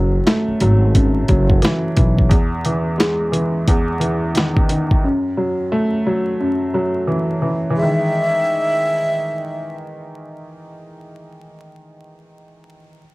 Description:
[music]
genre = hip hop, boom-bap hip-hop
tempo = 88 BPM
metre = 4/4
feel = swing 63% on 16ths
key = E major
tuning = A4 = 440 Hz
[part]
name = warm upright piano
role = accompaniment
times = 0.0-13.0 s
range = E2 to A3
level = -19 LUFS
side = equal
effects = none
[part]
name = upright bass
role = bass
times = 0.0-2.3 s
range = F#1 to B1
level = -16 LUFS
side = equal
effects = none
[part]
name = dusty soul sampler-style drum kit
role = drums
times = 0.3-5.0 s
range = hi-hat, kick drum, snare drum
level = -16 LUFS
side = equal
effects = cassette tape
[part]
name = breathy jazz flute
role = melody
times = 7.8-9.8 s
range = E5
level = -19 LUFS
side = equal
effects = cassette tape
[sound]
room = light reverb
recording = home recording on cassette, vinyl crackle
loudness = -15 LUFS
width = side -21 dB against mid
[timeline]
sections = 0.0-7.8 A section; 7.8-10.5 B section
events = break 0.0-5.0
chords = 0.0 F#m7; 2.3 Emaj7; 5.0 F#m7; 7.8 Emaj7

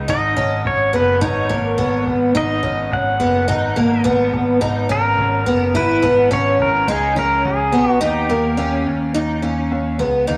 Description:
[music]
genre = dream pop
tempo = 106 BPM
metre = 4/4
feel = straight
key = G# minor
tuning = A4 = 440 Hz
[part]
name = picked twelve-string acoustic guitar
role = arpeggios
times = 0.0-10.4 s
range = A#3 to E4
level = -21 LUFS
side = equal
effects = ensemble chorus, analog delay
[part]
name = bright concert grand piano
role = bass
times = 0.0-10.4 s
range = F#1 to D#2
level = -24 LUFS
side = equal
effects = none
[part]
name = pedal steel guitar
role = melody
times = 0.1-8.8 s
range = G4 to F#5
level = -22 LUFS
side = equal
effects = analog delay
[sound]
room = light reverb, small room ambience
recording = dry, gritty hardware recording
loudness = -17 LUFS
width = mono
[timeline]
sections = 0.0-9.1 A section; 9.1-10.4 B section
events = none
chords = 0.1 G#m7; 4.6 E; 6.9 C#5; 8.0 D#; 9.1 D#5

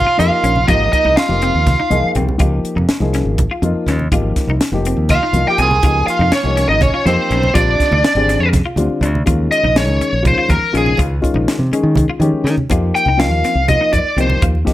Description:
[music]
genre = electric jazz fusion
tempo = 245 BPM (eighths)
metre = 7/8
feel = straight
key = Eb mixolydian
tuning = A4 = 440 Hz
[part]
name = bluesy overdriven lead guitar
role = melody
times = 0.0-2.1, 5.1-14.4 s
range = Ab4 to Ab5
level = -16 LUFS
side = equal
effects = distortion
[part]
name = bright tenor saxophone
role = second line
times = 0.0-2.1, 5.1-8.5 s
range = C4 to Ab4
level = -21 LUFS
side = right 3 dB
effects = none
[part]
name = modern bright fingered electric bass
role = bass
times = 0.0-14.7 s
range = F1 to Eb3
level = -17 LUFS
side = equal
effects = none
[part]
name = clean electric guitar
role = stabs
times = 0.1-14.6 s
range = C4 to F4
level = -25 LUFS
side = left 3 dB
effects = ensemble chorus
[part]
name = dark grand piano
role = accompaniment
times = 0.2-14.7 s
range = D3 to G5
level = -21 LUFS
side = left 3 dB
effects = none
[part]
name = tight funk drum kit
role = drums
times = 0.2-14.7 s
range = hi-hat, kick drum, snare drum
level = -18 LUFS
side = equal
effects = none
[part]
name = congas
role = percussion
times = 0.2-14.7 s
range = none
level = -23 LUFS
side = right 2 dB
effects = none
[sound]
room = light reverb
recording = none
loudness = -12 LUFS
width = side -14 dB against mid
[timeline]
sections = 0.0-9.3 A section; 9.3-14.7 B section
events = grand piano fill 1.7-2.4, 8.5-9.3; drum fill 2.0-2.4; lead electric guitar solo 9.3-14.7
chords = 0.0 Db; 0.7 Ab69; 2.4 Dbmaj7; 4.1 Ab69; 5.8 Dbmaj7; 7.5 Bb13; 9.3 Eb9sus4; 12.7 F9sus4

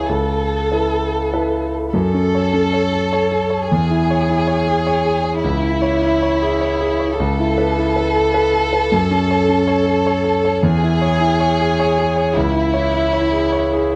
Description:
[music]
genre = neoclassical piano and strings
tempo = 103 BPM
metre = 3/4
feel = rubato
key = F# minor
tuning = A4 = 440 Hz
[part]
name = warm chamber violin section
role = melody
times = 0.0-14.0 s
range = E4 to A4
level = -21 LUFS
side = equal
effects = none
[part]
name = clear concert grand piano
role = accompaniment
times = 0.0-14.0 s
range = C#2 to C#5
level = -19 LUFS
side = equal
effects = none
[sound]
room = light reverb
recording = dark, warm production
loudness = -17 LUFS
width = mono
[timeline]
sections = 0.0-1.9 A section; 1.9-14.0 B section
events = none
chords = 0.1 Aadd9/C#; 1.9 F#m; 3.7 E6; 5.4 C#m; 7.2 Aadd9/C#; 8.9 F#m; 10.6 E6; 12.4 C#m

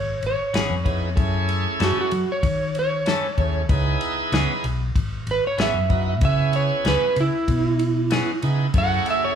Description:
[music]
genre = straight-eighth soul blues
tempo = 95 BPM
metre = 4/4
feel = straight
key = C# minor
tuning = A4 = 442 Hz
[part]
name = electric slide guitar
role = melody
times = 0.0-9.4 s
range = E4 to F#5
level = -23 LUFS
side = right 3 dB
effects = none
[part]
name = fingered electric bass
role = bass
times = 0.0-9.0 s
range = G#1 to F#3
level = -24 LUFS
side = equal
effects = none
[part]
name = warm soul drum kit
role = drums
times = 0.2-9.2 s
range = kick drum, ride cymbal, snare drum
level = -26 LUFS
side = left 2 dB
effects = none
[part]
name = clean electric guitar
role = stabs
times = 0.5-8.3 s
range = E3 to A4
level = -29 LUFS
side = left 4 dB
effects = none
[part]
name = bright tonewheel organ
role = accompaniment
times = 0.8-9.4 s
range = A3 to G#4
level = -27 LUFS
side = right 2 dB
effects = overdrive, slow rotary speaker
[part]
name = bright studio string section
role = sustained chords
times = 8.7-9.4 s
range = A3 to F#4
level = -30 LUFS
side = left 3 dB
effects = none
[sound]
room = moderate large studio reverb, RT60 1.3 s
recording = band playing live in one room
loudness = -19 LUFS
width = side -8 dB against mid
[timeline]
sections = 0.0-9.4 A section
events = electric slide guitar solo 0.0-9.4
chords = 0.0 C#m7; 1.2 F#m7; 3.7 C#m7; 8.7 F#m7

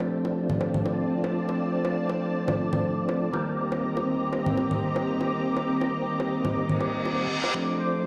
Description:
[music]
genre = deep house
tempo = 121 BPM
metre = 4/4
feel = swing 55% on 16ths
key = D phrygian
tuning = A4 = 439 Hz
[part]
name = soft string machine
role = sustained chords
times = 0.1-8.1 s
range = C4 to Bb5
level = -35 LUFS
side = equal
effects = ensemble chorus
[part]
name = percussive tonewheel organ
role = stabs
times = 0.0-8.1 s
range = Eb3 to D4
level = -30 LUFS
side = equal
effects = chorus vibrato, fast rotary speaker, low-pass filter, digital delay
[part]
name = bongos and congas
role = percussion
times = 0.0-7.5 s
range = none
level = -32 LUFS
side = equal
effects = overdrive
[part]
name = airy breathy pad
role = texture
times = 0.1-8.1 s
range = C4 to D6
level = -35 LUFS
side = equal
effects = chorus
[part]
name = reverse cymbal and riser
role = sound effects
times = 6.8-8.1 s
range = none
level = -34 LUFS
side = equal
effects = none
[part]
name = trumpet with metal mute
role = melody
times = 7.8-8.1 s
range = C5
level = -40 LUFS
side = equal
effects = low-pass filter, delay
[sound]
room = moderate lush hall reverb, RT60 1.9 s, digital ambience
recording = played on a big sound system in a bare room, large studio reverb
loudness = -27 LUFS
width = mono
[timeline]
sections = 0.0-7.5 A section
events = reverse cymbal 6.8-7.5; riser 7.5-8.1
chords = 0.0 Dm7; 3.3 Cm7; 7.5 Dm7

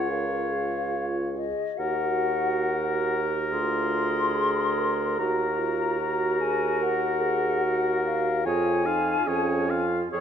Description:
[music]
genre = classical, slow romantic movement for wind quintet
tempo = 73 BPM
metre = 4/4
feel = rubato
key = unclear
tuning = A4 = 439 Hz
[part]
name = mellow hollow concert flute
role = melody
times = 0.0-10.2 s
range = Eb5 to Db6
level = -29 LUFS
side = left 6 dB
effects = none
[part]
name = warm oboe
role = second line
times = 0.0-10.2 s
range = Bb4 to F5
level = -30 LUFS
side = left 2 dB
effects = none
[part]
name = clear clarinet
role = accompaniment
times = 0.0-10.2 s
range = F4 to Ab4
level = -32 LUFS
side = right 5 dB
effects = none
[part]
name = warm French horn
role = accompaniment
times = 0.0-10.2 s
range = Db4 to Bb4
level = -31 LUFS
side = equal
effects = none
[part]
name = mellow bassoon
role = bass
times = 0.0-10.2 s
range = Db2 to F2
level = -29 LUFS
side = right 2 dB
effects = none
[sound]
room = moderate scoring stage reverb, RT60 1.9 s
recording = none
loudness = -23 LUFS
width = side -8 dB against mid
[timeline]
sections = 0.0-10.2 A section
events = none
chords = 0.0 Db; 1.8 Ebm; 3.5 Bb7/D; 5.2 Ebm; 8.4 Db/F

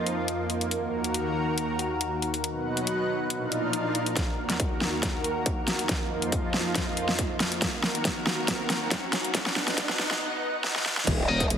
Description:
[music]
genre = heavy wobble dubstep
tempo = 139 BPM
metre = 4/4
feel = swing 53% on 16ths, half-time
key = Eb harmonic minor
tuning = A4 = 441 Hz
[part]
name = lush unison pad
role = sustained chords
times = 0.0-11.1 s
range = Eb2 to F#5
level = -29 LUFS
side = equal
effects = chorus, sidechain pumping
[part]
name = dubstep drum kit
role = drums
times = 0.1-11.6 s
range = crash cymbal, hi-hat, snare drum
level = -28 LUFS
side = equal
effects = overdrive
[part]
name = swell, riser and impact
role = sound effects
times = 3.4-11.6 s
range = none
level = -36 LUFS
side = equal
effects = none
[part]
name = electronic kick drum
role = drums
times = 4.2-11.5 s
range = none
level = -30 LUFS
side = equal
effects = distortion
[part]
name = growl bass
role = bass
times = 11.1-11.6 s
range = Eb1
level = -26 LUFS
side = equal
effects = chorus, overdrive
[part]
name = high-gain distorted guitar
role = stabs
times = 11.3-11.4 s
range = Eb4 to Eb5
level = -26 LUFS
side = left 4 dB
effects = distortion
[sound]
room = moderate lush hall reverb, RT60 1.7 s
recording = heavily compressed radio sound, multiband compression, high-pass filter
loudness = -25 LUFS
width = side -8 dB against mid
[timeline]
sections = 0.0-4.2 A section; 4.2-11.1 B section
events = swell 3.4-4.2, 10.2-11.1; build-up 4.2-11.1; drum fill 4.2-10.2, 10.6-11.1; riser 4.2-10.2; filter sweep 4.2-11.1; impact 11.1-11.6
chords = 0.0 Bbsus4/F; 0.7 Ebm; 2.4 B; 3.3 Bb; 4.2 Ebm; 5.9 Bbsus4/F; 7.6 Ebm; 9.3 B; 11.1 Eb5

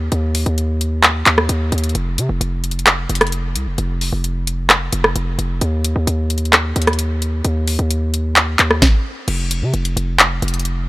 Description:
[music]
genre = hip hop, trap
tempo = 131 BPM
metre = 4/4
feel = half-time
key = unclear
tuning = A4 = 442 Hz
[part]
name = distorted 808-style bass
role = bass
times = 0.0-10.9 s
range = F1 to C3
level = -18 LUFS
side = equal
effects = distortion
[part]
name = trap drum kit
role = drums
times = 0.1-10.8 s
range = crash cymbal, handclaps, hi-hat, kick drum, rim click, snare drum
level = -15 LUFS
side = equal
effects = none
[sound]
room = little or no reverb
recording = none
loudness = -15 LUFS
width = side -19 dB against mid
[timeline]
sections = 0.0-9.3 A section; 9.3-10.9 B section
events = stop 8.8-9.3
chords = none

